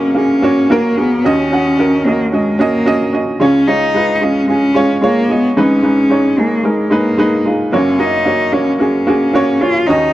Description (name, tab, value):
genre	pop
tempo	111 BPM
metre	4/4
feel	straight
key	F# major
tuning	A4 = 440 Hz
part	warm cello	melody	0.0-10.1 s	G#3 to E#4	-14 LUFS	equal	none
part	clear upright piano	accompaniment	0.0-10.1 s	F#1 to F#5	-14 LUFS	right 1 dB	none
room	light reverb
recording	dry, close 1970s-style studio recording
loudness	-11 LUFS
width	side -15 dB against mid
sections	0.0-10.1 A section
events	none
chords	0.0 F#; 1.2 D#m7; 3.4 C#; 5.6 G#m; 7.7 F#